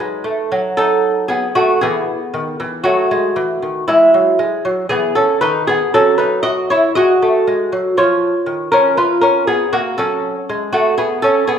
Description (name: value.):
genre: classical, baroque-style dance for lute.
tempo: 59 BPM.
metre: 4/4.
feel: rubato.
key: E major.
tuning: A4 = 440 Hz.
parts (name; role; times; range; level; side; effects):
lute; solo; 0.0-11.6 s; D#3 to D#5; -13 LUFS; equal; none.
room: moderate large studio reverb, RT60 1.3 s.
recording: band playing live in one room.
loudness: -13 LUFS.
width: side -8 dB against mid.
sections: 0.0-11.6 A section.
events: none.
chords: 0.0 D#dim/F#; 1.8 E; 5.9 F#m; 8.0 D#m11 (rootless); 10.0 F#m.